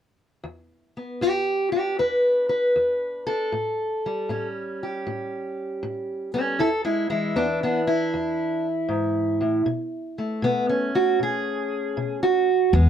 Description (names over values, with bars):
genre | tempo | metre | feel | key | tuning
acoustic country blues, solo or duo | 78 BPM | 4/4 | swing 67% on 8ths | unclear | A4 = 438 Hz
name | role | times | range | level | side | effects
fingerpicked steel-string acoustic guitar | melody | 0.4-12.9 s | E2 to B4 | -22 LUFS | equal | none
upright bass | bass | 12.7-12.9 s | E2 | -14 LUFS | left 1 dB | none
room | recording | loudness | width
light reverb | close, detailed microphones | -22 LUFS | side -9 dB against mid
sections
0.4-12.7 A section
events
none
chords
0.4 E5; 3.5 A7; 6.6 E7; 9.7 Amaj13/B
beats
| 0.45 1.22 1.99 2.76 | 3.53 4.30 5.07 5.84 | 6.61 7.37 8.14 8.91 | 9.68 10.44 11.21 11.97 | 12.74